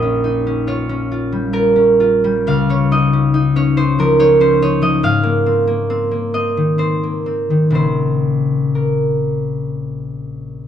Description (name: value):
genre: classical, solo harp piece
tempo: 53-73 BPM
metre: 3/4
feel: rubato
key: Bb dorian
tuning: A4 = 438 Hz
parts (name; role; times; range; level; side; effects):
- concert harp; solo; 0.0-10.7 s; Bb1 to F5; -14 LUFS; equal; none
room: light reverb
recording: dark, warm production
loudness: -13 LUFS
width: side -9 dB against mid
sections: 0.0-10.7 A section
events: none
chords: 0.0 Bbm6; 2.5 Dbadd9; 5.0 Abadd9; 7.8 Bbmadd9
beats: 0.67 1.54 | 2.48 3.35 4.19 | 5.01 5.88 6.78 | 7.75 8.76 9.73